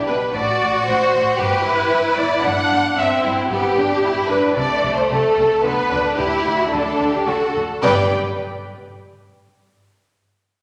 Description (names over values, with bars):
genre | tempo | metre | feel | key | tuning
quick classical-period movement for string orchestra | 112 BPM | 4/4 | straight | unclear | A4 = 439 Hz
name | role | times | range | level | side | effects
warm studio violin section | melody | 0.0-8.1 s | E4 to G5 | -26 LUFS | equal | none
rich studio violin section | second line | 0.0-8.1 s | A3 to D5 | -22 LUFS | equal | none
dark studio viola section | accompaniment | 0.0-8.1 s | E4 to F#5 | -23 LUFS | equal | none
rich studio cello section | bass | 0.1-8.1 s | G2 to D3 | -31 LUFS | equal | none
warm studio double bass section | bass | 0.1-8.1 s | G1 to D2 | -34 LUFS | equal | none
room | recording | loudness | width
wet scoring stage reverb, RT60 1.8 s | none | -18 LUFS | mono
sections
0.0-7.8 A section; 7.8-10.0 B section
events
none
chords
0.3 D7/A; 1.4 N.C.; 4.6 Am/C; 5.6 D5; 7.8 N.C.